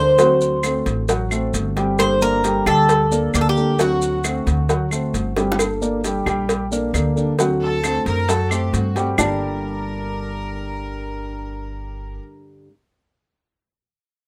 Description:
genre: latin, Cuban son and guajira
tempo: 134 BPM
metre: 4/4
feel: straight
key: G harmonic minor from 5.6 s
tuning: A4 = 441 Hz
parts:
  - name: Cuban tres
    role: melody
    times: 0.0-5.3 s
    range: F#4 to C5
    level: -21 LUFS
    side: equal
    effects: none
  - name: flamenco guitar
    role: accompaniment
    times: 0.0-12.7 s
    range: G2 to A4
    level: -30 LUFS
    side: equal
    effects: none
  - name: dark concert grand piano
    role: arpeggios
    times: 0.0-12.2 s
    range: F#3 to A5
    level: -26 LUFS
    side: equal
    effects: none
  - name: upright bass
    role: bass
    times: 0.0-12.2 s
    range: G1 to G2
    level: -26 LUFS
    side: equal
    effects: none
  - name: cowbell and bongos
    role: percussion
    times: 0.2-9.3 s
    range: none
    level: -27 LUFS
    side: equal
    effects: none
  - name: maracas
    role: percussion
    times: 0.2-9.3 s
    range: none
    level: -33 LUFS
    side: equal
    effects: none
  - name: claves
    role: percussion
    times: 0.6-9.3 s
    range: none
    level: -28 LUFS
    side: equal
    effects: none
  - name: clear chamber violin section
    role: second line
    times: 7.6-12.2 s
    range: F#4 to Bb4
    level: -30 LUFS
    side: equal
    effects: none
room: light reverb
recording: none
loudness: -20 LUFS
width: mono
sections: 0.0-5.6 A section; 5.6-9.2 B section; 9.2-12.8 C section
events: drum fill 5.4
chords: 0.2 D7; 2.0 Gmadd9; 3.8 D7; 5.6 Gmadd9; 7.4 D7; 9.2 Gmadd9

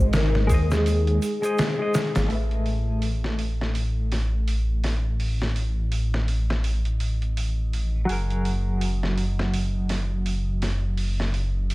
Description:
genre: trip hop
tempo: 83 BPM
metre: 4/4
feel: swing 59% on 16ths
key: unclear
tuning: A4 = 440 Hz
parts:
  - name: vibraphone with soft mallets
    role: melody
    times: 0.0-2.2 s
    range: Ab4 to Bb4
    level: -28 LUFS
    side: left 3 dB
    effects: vintage 12-bit sampler grit, tape echo
  - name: semi-hollow electric guitar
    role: accompaniment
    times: 0.0-11.7 s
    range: Gb3 to E5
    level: -30 LUFS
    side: right 1 dB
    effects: tremolo, vintage 12-bit sampler grit, low-pass filter, tape echo
  - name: dark analog pad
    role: sustained chords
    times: 0.0-11.7 s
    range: Eb3 to Eb6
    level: -44 LUFS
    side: right 1 dB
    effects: none
  - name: dark detuned saw bass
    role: bass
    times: 0.0-11.7 s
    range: Gb1 to Eb2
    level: -24 LUFS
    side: equal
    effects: none
  - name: trip hop sampler-style drum kit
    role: drums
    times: 0.1-11.7 s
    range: hi-hat, kick drum, snare drum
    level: -28 LUFS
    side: equal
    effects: high-pass filter on hats, studio reverb, high-pass filter on kick, high-pass filter on snare
  - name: tube shaker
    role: percussion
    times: 0.1-2.3 s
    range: none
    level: -43 LUFS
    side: right 3 dB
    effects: none
room: little or no reverb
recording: none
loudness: -22 LUFS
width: side -20 dB against mid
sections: 0.0-2.3 A section; 2.3-11.7 B section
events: filter sweep on clean electric guitar 2.3-11.7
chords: 0.0 Ab; 2.3 Asus2; 8.1 Gbadd9

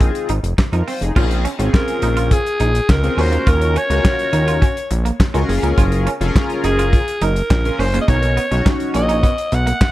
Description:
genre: early-eighties boogie funk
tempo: 104 BPM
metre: 4/4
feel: straight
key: Bb minor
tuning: A4 = 440 Hz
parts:
  - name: chorused polysynth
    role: accompaniment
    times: 0.0-9.3 s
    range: C4 to C#5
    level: -22 LUFS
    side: left 2 dB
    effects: none
  - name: fat analog bass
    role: bass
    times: 0.0-9.7 s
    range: F1 to F2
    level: -18 LUFS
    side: equal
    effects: none
  - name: damped 70s drum kit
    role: drums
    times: 0.0-9.9 s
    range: crash cymbal, handclaps, hi-hat, kick drum, snare drum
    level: -17 LUFS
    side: equal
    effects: none
  - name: electric guitar at the edge of break-up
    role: riff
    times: 0.3-9.8 s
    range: Ab3 to F4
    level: -27 LUFS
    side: right 6 dB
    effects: lush chorus
  - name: raspy alto saxophone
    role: melody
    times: 1.7-9.9 s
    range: Ab4 to F#5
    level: -21 LUFS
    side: equal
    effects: none
room: small room ambience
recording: dark, warm production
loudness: -14 LUFS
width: side -16 dB against mid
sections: 0.0-1.2 A section; 1.2-9.9 B section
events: none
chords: 0.0 Fm7; 1.2 Bbm9; 3.2 Ebm9; 5.5 Gbmaj7; 8.1 Bmaj9

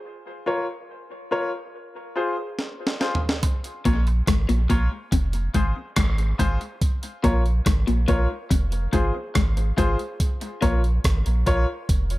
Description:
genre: dub reggae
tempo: 71 BPM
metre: 4/4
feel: straight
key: Bb minor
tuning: A4 = 441 Hz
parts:
  - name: warm upright piano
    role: stabs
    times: 0.5-11.7 s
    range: F4 to Db5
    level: -28 LUFS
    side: left 2 dB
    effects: high-pass filter, dub echo
  - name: breakbeat sampler-style drum kit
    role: drums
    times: 2.6-12.2 s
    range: hi-hat, kick drum, rim click, snare drum, toms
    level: -23 LUFS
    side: equal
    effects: none
  - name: bongos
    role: percussion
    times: 3.4-3.6 s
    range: none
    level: -42 LUFS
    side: right 5 dB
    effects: none
  - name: electric guitar through a small old amp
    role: riff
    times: 3.9-10.9 s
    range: F2 to Bb2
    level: -27 LUFS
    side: left 4 dB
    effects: analog chorus, dub echo
  - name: warm sub bass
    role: bass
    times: 3.9-12.2 s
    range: F1 to Bb1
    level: -22 LUFS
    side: equal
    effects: none
room: light reverb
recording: none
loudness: -21 LUFS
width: side -18 dB against mid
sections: 0.0-12.2 A section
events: filter sweep 0.0-6.8; drum fill 2.6-3.4; part muted 3.4-12.2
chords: 0.0 Bbm; 1.7 Fm; 3.4 Bbm; 5.1 Fm; 6.8 Bbm; 8.5 Fm; 10.2 Bbm

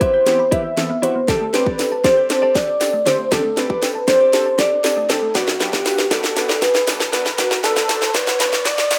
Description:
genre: dance-pop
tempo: 118 BPM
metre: 4/4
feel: straight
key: unclear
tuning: A4 = 442 Hz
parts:
  - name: warm velvety synth lead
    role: melody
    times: 0.0-9.0 s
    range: F#4 to E5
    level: -20 LUFS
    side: equal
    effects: chorus
  - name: warm analog keys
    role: accompaniment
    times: 0.0-9.0 s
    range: E3 to D5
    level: -29 LUFS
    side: equal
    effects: chorus, phaser, sidechain pumping
  - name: direct-recorded clean electric guitar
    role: riff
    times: 0.0-8.8 s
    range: C4 to E5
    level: -30 LUFS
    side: equal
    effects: subtle chorus
  - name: house drum kit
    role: drums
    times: 0.0-9.0 s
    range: hi-hat, kick drum, snare drum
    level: -22 LUFS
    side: equal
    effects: none
  - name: thumb-piano-like synth pluck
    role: arpeggios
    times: 0.1-9.0 s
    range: B2 to G6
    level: -34 LUFS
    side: equal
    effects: chorus, phaser, sidechain pumping, digital delay
  - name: tambourine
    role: percussion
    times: 1.3-9.0 s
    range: none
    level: -39 LUFS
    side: equal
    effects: none
  - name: riser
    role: sound effects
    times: 2.9-9.0 s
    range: none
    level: -34 LUFS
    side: equal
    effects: none
room: moderate plate reverb, RT60 1.5 s, digital ambience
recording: rough home demo mix, high-pass filter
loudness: -17 LUFS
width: mono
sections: 0.0-9.0 A section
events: build-up 0.0-9.0; drum fill 0.0-9.0; filter sweep 0.0-9.0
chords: 0.0 Cmaj7/E; 1.3 D7sus4; 5.4 Bm

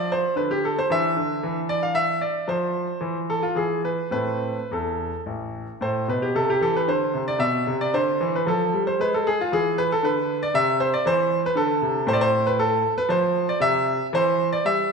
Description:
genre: classical, baroque-style suite movement for grand piano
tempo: 114 BPM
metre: 3/4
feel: rubato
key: A minor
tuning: A4 = 444 Hz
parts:
  - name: bright baby grand piano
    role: solo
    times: 0.0-14.9 s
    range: A1 to F5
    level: -20 LUFS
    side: equal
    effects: none
room: moderate concert hall reverb, RT60 1.8 s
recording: minimal, uncompressed stereo recording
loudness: -20 LUFS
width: side -5 dB against mid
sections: 0.0-5.8 A section; 5.8-14.9 B section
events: none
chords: 0.0 Dm13; 0.9 Dsus2; 2.5 N.C.; 4.1 Am; 7.4 Bdim; 9.0 E7; 10.5 Am/C; 12.1 F/A; 13.6 C

